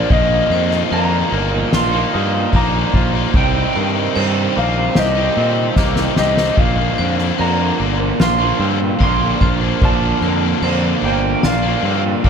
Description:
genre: post-rock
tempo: 74 BPM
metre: 4/4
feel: straight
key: Bb major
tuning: A4 = 440 Hz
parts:
  - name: electric slide guitar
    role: melody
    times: 0.0-12.3 s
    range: D5 to C6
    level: -21 LUFS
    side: left 1 dB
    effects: analog delay
  - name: deep dark ambient pad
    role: sustained chords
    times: 0.0-12.3 s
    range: D4 to C6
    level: -31 LUFS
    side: left 1 dB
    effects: none
  - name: twangy electric guitar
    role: arpeggios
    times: 0.0-12.3 s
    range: Bb2 to G4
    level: -27 LUFS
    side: left 3 dB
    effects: analog delay
  - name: vibraphone with hard mallets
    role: arpeggios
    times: 0.0-12.3 s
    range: Bb4 to D6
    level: -29 LUFS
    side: right 4 dB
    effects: analog delay
  - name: crunchy overdriven guitar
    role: riff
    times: 0.0-12.3 s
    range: Bb2 to Eb4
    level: -22 LUFS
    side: right 16 dB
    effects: spring reverb
  - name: distorted electric guitar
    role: riff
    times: 0.0-12.3 s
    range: Bb2 to Eb4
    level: -22 LUFS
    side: left 15 dB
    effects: overdrive
  - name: fuzz fingered electric bass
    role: bass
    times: 0.1-12.3 s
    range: G1 to Bb2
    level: -20 LUFS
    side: equal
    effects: overdrive
  - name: soft-mallet drum kit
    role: drums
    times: 0.1-12.3 s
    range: crash cymbal, kick drum, snare drum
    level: -20 LUFS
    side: equal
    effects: none
room: moderate studio reverb, RT60 0.5 s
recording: none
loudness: -14 LUFS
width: side -7 dB against mid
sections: 0.0-12.3 A section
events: drum fill 5.8-6.6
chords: 0.1 Ebsus2; 3.3 Cm7; 6.6 Bbadd9

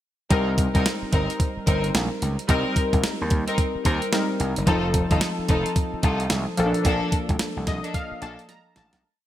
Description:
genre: R&B, new jack swing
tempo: 110 BPM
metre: 4/4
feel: swing 62% on 16ths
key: C dorian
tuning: A4 = 440 Hz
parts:
  - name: warm analog keys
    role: accompaniment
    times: 0.3-9.1 s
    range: F3 to Bb5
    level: -27 LUFS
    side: left 1 dB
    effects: chorus
  - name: rich studio string section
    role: stabs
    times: 0.3-8.4 s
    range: Bb3 to Bb4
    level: -28 LUFS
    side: left 1 dB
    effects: digital delay
  - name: gritty slap bass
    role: bass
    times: 0.3-9.0 s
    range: F1 to Eb2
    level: -26 LUFS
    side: equal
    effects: overdrive
  - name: clean 12-bit digital drum machine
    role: drums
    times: 0.3-9.0 s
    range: hi-hat, kick drum, snare drum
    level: -24 LUFS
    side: equal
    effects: none
room: light reverb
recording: bright 1980s-style digital production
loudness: -21 LUFS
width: side -12 dB against mid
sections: 0.3-9.0 verse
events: fade-out 6.9-9.0; synth keys fill 7.4-9.0; drum fill 8.5-9.0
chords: 0.3 Cm7; 4.7 F7; 6.6 Bbmaj7

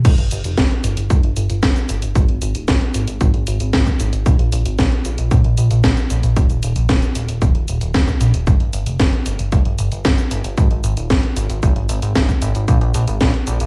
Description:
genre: italo disco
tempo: 114 BPM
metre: 4/4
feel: straight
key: unclear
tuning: A4 = 438 Hz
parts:
  - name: chorused synth bass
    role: bass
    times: 0.0-13.7 s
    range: Eb1 to Bb1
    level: -21 LUFS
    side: equal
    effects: none
  - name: electronic kick drum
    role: drums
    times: 0.0-13.3 s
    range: none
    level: -18 LUFS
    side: equal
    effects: overdrive
  - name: house drum kit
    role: drums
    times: 0.0-13.7 s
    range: cabasa, crash cymbal, hi-hat, snare drum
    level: -24 LUFS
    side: equal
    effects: overdrive, gated reverb
room: little or no reverb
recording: vinyl crackle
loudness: -17 LUFS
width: mono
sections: 0.0-13.7 A section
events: none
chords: none

